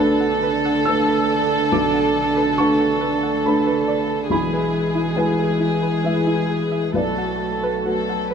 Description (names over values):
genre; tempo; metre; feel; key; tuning
neoclassical piano and strings; 65-70 BPM; 3/4; rubato; B dorian; A4 = 440 Hz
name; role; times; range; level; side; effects
warm chamber violin section; melody; 0.0-8.3 s; G#4 to A4; -22 LUFS; right 1 dB; none
warm cello; second line; 0.0-8.3 s; D3 to F#3; -24 LUFS; right 4 dB; slapback echo
dark upright piano; accompaniment; 0.0-8.3 s; B1 to E6; -23 LUFS; left 1 dB; none
warm analog pad; sustained chords; 0.0-8.3 s; G#3 to B4; -28 LUFS; left 4 dB; chorus
string-like resonator pluck; arpeggios; 0.0-8.3 s; E4 to A5; -29 LUFS; right 2 dB; chorus, slapback echo
room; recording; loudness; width
light reverb; dark, warm production; -17 LUFS; side -7 dB against mid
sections
0.0-8.3 A section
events
none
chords
0.0 Bm7; 4.3 E/B; 6.9 Bm7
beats
0.86 | 1.72 2.57 3.44 | 4.30 5.16 6.03 | 6.93 7.84